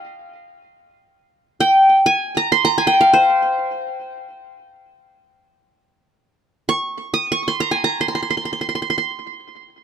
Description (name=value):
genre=Arabic maqam ensemble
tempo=free time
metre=none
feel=none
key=C maqam kurd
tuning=A4 = 437 Hz
part: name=qanun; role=solo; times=0.0-9.7 s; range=C5 to Eb6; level=-16 LUFS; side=equal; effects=tape echo
room=moderate studio reverb, RT60 0.6 s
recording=close, detailed microphones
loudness=-15 LUFS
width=side -9 dB against mid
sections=0.0-6.1 A section; 6.1-9.8 A section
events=none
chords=none